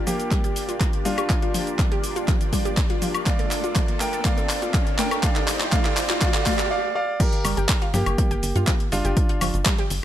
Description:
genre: progressive house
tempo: 122 BPM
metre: 4/4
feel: straight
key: G minor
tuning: A4 = 443 Hz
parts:
  - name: filtered supersaw swell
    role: sustained chords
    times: 0.0-6.7 s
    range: Bb3 to G5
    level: -32 LUFS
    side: equal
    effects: phaser, sidechain pumping
  - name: analog pluck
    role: arpeggios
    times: 0.0-9.9 s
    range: F3 to G5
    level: -30 LUFS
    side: left 1 dB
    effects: chorus, sidechain pumping, ping-pong delay
  - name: riser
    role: sound effects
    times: 2.1-6.7 s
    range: none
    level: -33 LUFS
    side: equal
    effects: none
  - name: bright concert grand piano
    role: melody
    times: 0.1-9.6 s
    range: Bb3 to G5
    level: -28 LUFS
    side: right 1 dB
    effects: low-pass filter, ping-pong delay
  - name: deep house drum kit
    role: drums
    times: 0.1-10.0 s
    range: cabasa, crash cymbal, handclaps, hi-hat, woodblock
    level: -27 LUFS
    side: left 1 dB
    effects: high-pass filter on snare, high-pass filter on hats, high-pass filter on perc, high-pass filter on cymbals, high-pass filter on room
  - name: electronic kick drum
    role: drums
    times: 0.3-9.8 s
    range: none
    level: -22 LUFS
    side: equal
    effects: overdrive
  - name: tight sequencer bass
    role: bass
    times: 7.4-10.0 s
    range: G1 to G2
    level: -24 LUFS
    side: equal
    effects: sidechain pumping
room: light reverb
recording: faint mains hum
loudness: -20 LUFS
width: side -12 dB against mid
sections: 0.0-7.2 A section; 7.2-10.0 B section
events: build-up 0.0-7.2; drum fill 0.0-6.7; riser 2.1-6.7; break 6.7-7.2; drop 7.2-10.0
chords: 0.0 Gm7; 3.3 Bbmaj7; 5.2 Cm7; 7.2 Gm7

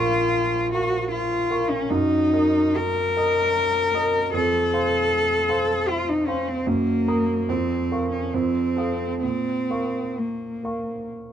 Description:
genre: classical, romantic duo for cello and grand piano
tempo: 63-79 BPM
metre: 3/4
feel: rubato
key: Bb minor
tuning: A4 = 435 Hz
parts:
  - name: warm cello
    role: melody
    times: 0.0-11.1 s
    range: Bb3 to Bb4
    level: -22 LUFS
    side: left 2 dB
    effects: none
  - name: clear grand piano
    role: accompaniment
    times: 0.0-11.3 s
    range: Bb1 to Eb6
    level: -25 LUFS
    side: right 3 dB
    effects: none
room: moderate stone room reverb, RT60 1.0 s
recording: dark, warm production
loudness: -20 LUFS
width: side -9 dB against mid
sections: 0.0-11.3 A section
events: none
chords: 0.0 Bbm; 1.9 Ebm/Gb; 4.3 F; 6.7 Ebm/Gb; 7.5 Bbm/F; 8.3 F7; 9.2 Bbm

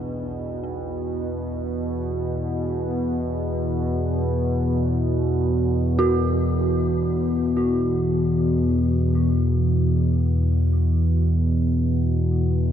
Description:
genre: ambient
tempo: free time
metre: none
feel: none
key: unclear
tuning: A4 = 440 Hz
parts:
  - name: dark detuned synth bell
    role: arpeggios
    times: 0.0-12.7 s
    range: B3 to F#4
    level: -30 LUFS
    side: right 2 dB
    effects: chorus, analog delay
  - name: analog drone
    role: drone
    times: 0.0-12.7 s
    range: E2 to B2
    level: -20 LUFS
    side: equal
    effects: chorus
room: moderate huge ambient reverb, RT60 8.1 s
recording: dreamy mix soaked in reverb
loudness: -20 LUFS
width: side -9 dB against mid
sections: 0.0-12.7 A section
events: fade-in on synth drone 0.0-12.7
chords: 0.0 Esus2

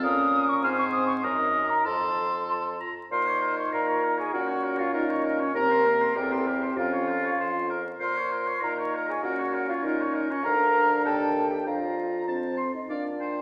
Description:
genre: quick classical-period movement for wind quintet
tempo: 98 BPM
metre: 2/4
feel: straight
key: Bb minor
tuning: A4 = 442 Hz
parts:
  - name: mellow hollow silver concert flute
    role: melody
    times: 0.0-13.4 s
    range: C5 to F6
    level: -30 LUFS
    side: equal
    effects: none
  - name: clear oboe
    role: second line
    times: 0.0-13.4 s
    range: A4 to C6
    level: -34 LUFS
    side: equal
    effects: none
  - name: clear clarinet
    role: accompaniment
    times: 0.0-13.4 s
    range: Db4 to Bb5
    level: -32 LUFS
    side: equal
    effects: none
  - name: mellow French horn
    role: accompaniment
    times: 0.0-13.4 s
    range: Bb3 to F4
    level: -35 LUFS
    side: equal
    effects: none
  - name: warm bassoon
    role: bass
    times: 0.0-13.4 s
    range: D2 to Bb2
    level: -36 LUFS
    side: equal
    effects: none
room: wet recital hall reverb, RT60 1.6 s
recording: vinyl crackle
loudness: -26 LUFS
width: mono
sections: 0.0-3.1 A section; 3.1-12.9 B section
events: none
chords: 0.0 Bbm; 0.6 Ab; 1.2 Ebm/Gb; 1.9 F; 3.1 Bbm; 5.6 Cm7/Eb; 6.2 C7/E; 6.8 Bbm/F; 8.0 Bbm; 10.4 Bb/D; 11.0 Ebmaj7#11; 11.7 Bb/F; 12.3 F; 12.9 Bb

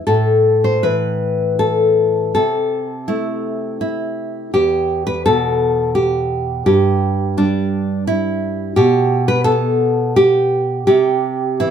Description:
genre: romantic piece for solo classical guitar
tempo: 77-87 BPM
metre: 3/4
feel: rubato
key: A minor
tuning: A4 = 437 Hz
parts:
  - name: nylon-string guitar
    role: solo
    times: 0.0-11.7 s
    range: E2 to C5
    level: -14 LUFS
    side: equal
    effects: slapback echo
room: light reverb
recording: band playing live in one room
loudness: -14 LUFS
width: side -8 dB against mid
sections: 0.1-11.7 A section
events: none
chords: 0.1 A5; 2.3 Am/C; 4.5 Em; 6.7 N.C.; 10.9 C

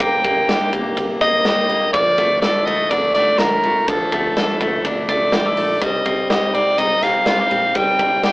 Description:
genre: jangly indie pop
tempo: 124 BPM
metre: 4/4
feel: straight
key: unclear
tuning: A4 = 440 Hz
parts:
  - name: edgy soprano saxophone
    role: melody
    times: 0.0-8.3 s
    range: A4 to G5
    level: -17 LUFS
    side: equal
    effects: none
  - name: fingerpicked steel-string acoustic guitar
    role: accompaniment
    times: 0.0-8.3 s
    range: G2 to A4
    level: -28 LUFS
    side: right 1 dB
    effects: none
  - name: electric guitar at the edge of break-up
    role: arpeggios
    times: 0.0-8.3 s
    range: F3 to A4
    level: -22 LUFS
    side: equal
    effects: none
  - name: vintage muted picked electric bass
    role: bass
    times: 0.0-8.3 s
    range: G1 to D2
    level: -33 LUFS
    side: equal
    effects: none
  - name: big rock drum kit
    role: drums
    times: 0.0-8.3 s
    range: hi-hat, kick drum, ride cymbal, snare drum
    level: -21 LUFS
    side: equal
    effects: none
room: moderate small room reverb, RT60 0.5 s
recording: rough rehearsal-room recording, AM radio sound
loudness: -15 LUFS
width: side -22 dB against mid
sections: 0.0-8.3 A section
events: none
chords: 0.0 Gm; 1.9 Dm; 5.8 Cm

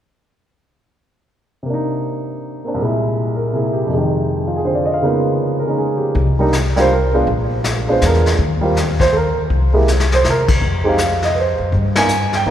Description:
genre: jazz piano trio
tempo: 161 BPM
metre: 3/4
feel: swing 64% on 8ths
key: C minor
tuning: A4 = 439 Hz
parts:
  - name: warm grand piano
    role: melody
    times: 1.6-12.5 s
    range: C2 to Ab5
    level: -16 LUFS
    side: right 1 dB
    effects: none
  - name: upright bass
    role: bass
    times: 6.1-12.5 s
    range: Bb1 to C3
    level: -17 LUFS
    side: left 1 dB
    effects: none
  - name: vintage brush drum kit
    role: drums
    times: 6.2-12.5 s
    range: brushed snare drum, crash cymbal, hi-hat, kick drum, ride cymbal, snare drum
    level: -21 LUFS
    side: left 2 dB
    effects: none
room: wet cathedral reverb, RT60 4.8 s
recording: recorded in a church or concert hall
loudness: -14 LUFS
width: side -10 dB against mid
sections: 1.7-6.2 A section; 6.2-12.5 B section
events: drum fill 9.9-10.3; band accent 11.9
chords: 1.7 Cm9; 2.8 C7b13; 3.9 Fm7; 5.0 Db13; 6.2 C7sus2; 7.3 Bb7b9; 8.4 Eb5; 9.5 C7(no3); 10.6 F7(no3); 11.7 N.C.

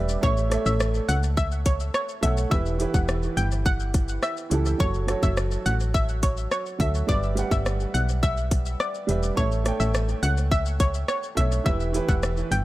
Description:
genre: dancehall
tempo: 105 BPM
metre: 4/4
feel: straight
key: unclear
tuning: A4 = 442 Hz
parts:
  - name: analog pluck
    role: melody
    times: 0.0-12.6 s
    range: C#5 to G5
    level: -29 LUFS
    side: equal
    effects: chorus, dub echo
  - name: clear baby grand piano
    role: accompaniment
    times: 0.0-12.6 s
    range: E3 to G5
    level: -30 LUFS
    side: right 3 dB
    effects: dub echo
  - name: solid FM bass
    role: bass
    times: 0.0-12.6 s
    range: E1 to D2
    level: -25 LUFS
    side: equal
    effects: none
  - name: island pop drum kit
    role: drums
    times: 0.1-12.6 s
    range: hi-hat, kick drum, rim click, shaker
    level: -26 LUFS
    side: equal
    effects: none
room: little or no reverb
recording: echo-heavy mix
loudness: -22 LUFS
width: side -17 dB against mid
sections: 0.0-12.6 A section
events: none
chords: 0.2 A; 2.5 Em; 4.8 F#m; 7.1 G6; 9.4 A; 11.7 Em

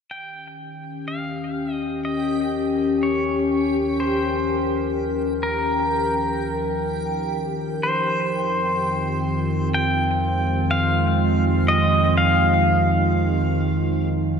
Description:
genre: ambient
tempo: 62 BPM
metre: 4/4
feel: straight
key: unclear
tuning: A4 = 441 Hz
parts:
  - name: pedal steel guitar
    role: melody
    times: 0.1-14.1 s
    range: Bb4 to G5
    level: -24 LUFS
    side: left 1 dB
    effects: analog delay
  - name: warbly tape-like pad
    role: sustained chords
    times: 0.8-14.4 s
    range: Eb3 to Bb4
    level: -23 LUFS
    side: left 1 dB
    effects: chorus, built-in reverb
  - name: round analog bass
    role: bass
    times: 0.1-14.4 s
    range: Eb2 to F2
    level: -26 LUFS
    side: right 1 dB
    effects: tube saturation
  - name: analog drone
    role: drone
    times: 3.2-14.4 s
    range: F3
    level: -31 LUFS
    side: right 2 dB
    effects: chorus
  - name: backwards swelling texture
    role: texture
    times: 0.7-14.4 s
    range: G4 to G5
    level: -34 LUFS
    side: right 2 dB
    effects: built-in reverb
room: wet plate reverb, RT60 3.2 s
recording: echo-heavy mix, nothing above 10.7 kHz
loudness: -19 LUFS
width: side -6 dB against mid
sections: 0.1-14.4 A section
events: fade-in on analog synth bass 0.1-14.4; fade-in on synth drone 0.1-14.4; fade-in on pedal steel guitar 0.1-14.4; fade-out on synth texture 0.1-14.4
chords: 0.1 Eb7; 7.8 Fm7

